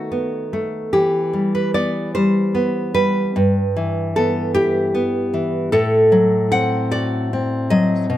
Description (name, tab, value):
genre	romantic piece for solo classical guitar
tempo	50 BPM (dotted quarters)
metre	6/8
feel	rubato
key	E minor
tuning	A4 = 440 Hz
part	nylon-string guitar	solo	0.0-8.2 s	G2 to F#5	-16 LUFS	equal	none
room	moderate recital hall reverb, RT60 1.4 s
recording	close, detailed microphones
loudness	-16 LUFS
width	side -13 dB against mid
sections	0.0-8.2 A section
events	none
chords	0.0 B7/D#; 0.9 Em; 3.4 Em/G; 5.7 F#dim/A